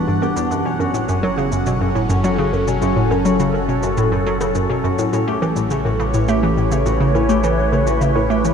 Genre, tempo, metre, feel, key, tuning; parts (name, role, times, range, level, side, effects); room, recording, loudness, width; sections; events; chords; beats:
ambient, sequencer-driven space music; 104 BPM; 4/4; straight; A4 = 440 Hz
phased analog pad; sustained chords; 0.0-8.5 s; E3 to F#5; -20 LUFS; equal; phaser, chorus
concert harp; arpeggios; 0.0-8.5 s; C#4 to G4; -24 LUFS; left 2 dB; auto-pan, ping-pong delay
round analog bass; bass; 0.0-8.5 s; E1 to A1; -25 LUFS; equal
hollow square pluck; riff; 0.1-8.5 s; E2 to B3; -19 LUFS; equal; chorus, ping-pong delay
bongos and shaker; percussion; 0.2-8.5 s; -33 LUFS; right 2 dB; ping-pong delay
wet huge ambient reverb, RT60 8.4 s; dark, warm production; -15 LUFS; side -7 dB against mid
0.0-8.5 A section
fade-in on analog synth bass 0.0-8.5
0.0 Em7; 0.5 F#m; 5.1 A7
| 0.51 1.09 1.67 2.24 | 2.82 3.40 3.98 4.55 | 5.13 5.71 6.28 6.86 | 7.44 8.01